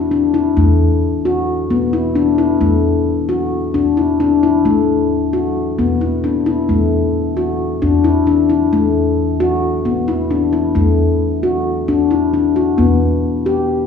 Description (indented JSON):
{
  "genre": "contemporary instrumental, chamber music in an uneven meter",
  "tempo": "265 BPM (eighths)",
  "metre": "9/8",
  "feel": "straight",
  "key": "unclear",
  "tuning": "A4 = 435 Hz",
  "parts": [
    { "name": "handpan", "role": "arpeggios", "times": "0.0-13.9 s", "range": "A3 to G4", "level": "-14 LUFS", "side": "left 4 dB", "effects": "none" },
    { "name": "upright bass", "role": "bass", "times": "0.0-13.9 s", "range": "E2", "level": "-20 LUFS", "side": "equal", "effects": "none" }
  ],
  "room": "wet recital hall reverb, RT60 1.6 s",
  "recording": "recorded in a church or concert hall, studio ambience",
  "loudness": "-13 LUFS",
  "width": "side -6 dB against mid",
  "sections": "0.0-13.9 A section",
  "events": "none",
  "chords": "0.0 Dsus2/E; 0.6 F#m7/E; 1.7 E5; 2.6 Esus24; 3.7 Dsus2/E; 4.6 F#m7/E; 5.8 E5; 6.7 Esus24; 7.8 Dsus2/E; 8.7 F#m7/E; 9.8 E5; 10.8 Esus24; 11.9 Dadd9/E; 12.8 Em"
}